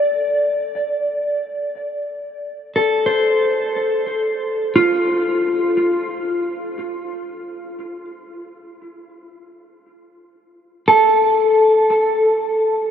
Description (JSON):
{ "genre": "ambient", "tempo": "free time", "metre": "none", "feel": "none", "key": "unclear", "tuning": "A4 = 439 Hz", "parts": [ { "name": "mellow electric guitar", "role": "solo", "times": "0.0-12.9 s", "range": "F4 to D5", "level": "-16 LUFS", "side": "equal", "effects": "wide subtle chorus, analog delay" } ], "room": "wet huge ambient reverb, RT60 8.0 s", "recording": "dreamy mix soaked in reverb, cassette tape", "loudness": "-16 LUFS", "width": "side -8 dB against mid", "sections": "0.0-10.9 A section; 10.9-12.9 B section", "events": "none", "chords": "0.0 G9sus4 (rootless); 10.9 N.C." }